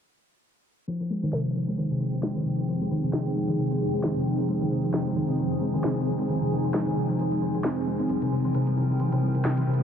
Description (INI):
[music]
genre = IDM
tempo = 133 BPM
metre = 4/4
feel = swing 56% on 16ths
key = F minor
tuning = A4 = 438 Hz
[part]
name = granular cloud pad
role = sustained chords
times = 1.8-9.8 s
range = C3 to Ab5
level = -28 LUFS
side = right 1 dB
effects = built-in reverb
[part]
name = buzzing kalimba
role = arpeggios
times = 0.9-9.8 s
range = C3 to C4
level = -26 LUFS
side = left 1 dB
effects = low-pass filter, ping-pong delay
[part]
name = glitchy drum kit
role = drums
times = 0.9-9.8 s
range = hi-hat, snare drum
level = -34 LUFS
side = equal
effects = ping-pong delay
[sound]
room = light reverb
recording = low-pass filter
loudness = -24 LUFS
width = side -8 dB against mid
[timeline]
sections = 0.9-9.8 A section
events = filter sweep on kalimba 0.9-9.8; filter sweep 0.9-9.8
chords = 0.9 Fm7; 8.1 C7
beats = | 0.88 1.33 1.78 2.23 | 2.68 3.13 3.58 4.04 | 4.49 4.94 5.39 5.84 | 6.29 6.74 7.19 7.64 | 8.10 8.55 9.00 9.45